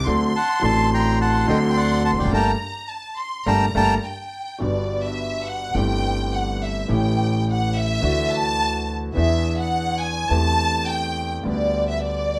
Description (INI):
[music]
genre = tango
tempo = 105 BPM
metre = 4/4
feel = rubato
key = G minor, G major from 4.6 s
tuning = A4 = 440 Hz
[part]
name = warm studio violin section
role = second line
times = 0.0-12.4 s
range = D5 to C6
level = -27 LUFS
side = equal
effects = none
[part]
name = clear concert grand piano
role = accompaniment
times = 0.0-12.4 s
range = G1 to A4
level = -26 LUFS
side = equal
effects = none
[part]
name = upright bass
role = bass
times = 0.0-12.4 s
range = E1 to E2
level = -27 LUFS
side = equal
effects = none
[part]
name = bandoneon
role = melody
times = 0.4-3.9 s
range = D5 to C6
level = -24 LUFS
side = equal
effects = none
[sound]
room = moderate studio reverb, RT60 0.6 s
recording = none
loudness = -22 LUFS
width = mono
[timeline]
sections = 0.0-4.6 A section; 4.6-12.4 B section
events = band accent 2.3-4.6; violin section solo 4.6-12.4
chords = 0.1 D7; 2.3 Gmadd9; 4.6 Gmaj7; 5.8 C6/G; 6.9 A7; 8.0 Dadd9; 9.2 E7; 10.3 Am7/E; 11.5 G/D